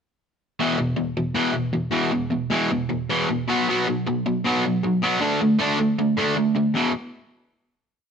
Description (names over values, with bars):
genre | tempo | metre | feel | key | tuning
punk | 156 BPM | 4/4 | straight | unclear | A4 = 437 Hz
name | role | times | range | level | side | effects
crunchy overdriven guitar | solo | 0.6-6.9 s | E2 to D4 | -20 LUFS | equal | none
room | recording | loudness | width
moderate stone room reverb, RT60 1.1 s | band playing live in one room | -20 LUFS | side -6 dB against mid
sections
0.6-6.8 verse; 6.8-8.1 final chord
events
none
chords
0.6 E5; 3.5 B5; 5.2 D5; 6.8 E5